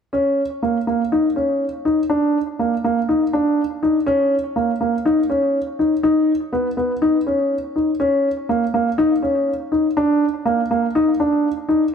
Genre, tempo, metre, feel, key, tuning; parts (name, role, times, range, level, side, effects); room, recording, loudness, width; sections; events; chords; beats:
electronica; 122 BPM; 4/4; straight; A4 = 439 Hz
dark baby grand piano; riff; 0.1-11.8 s; Bb3 to Eb4; -17 LUFS; equal; digital delay
moderate echo chamber reverb, RT60 2.2 s; -17 LUFS; side -7 dB against mid
0.1-11.9 A section
| 0.13 0.62 1.11 1.61 | 2.10 2.59 3.08 3.57 | 4.07 4.56 5.05 5.54 | 6.03 6.53 7.02 7.51 | 8.00 8.49 8.98 9.48 | 9.97 10.46 10.95 11.44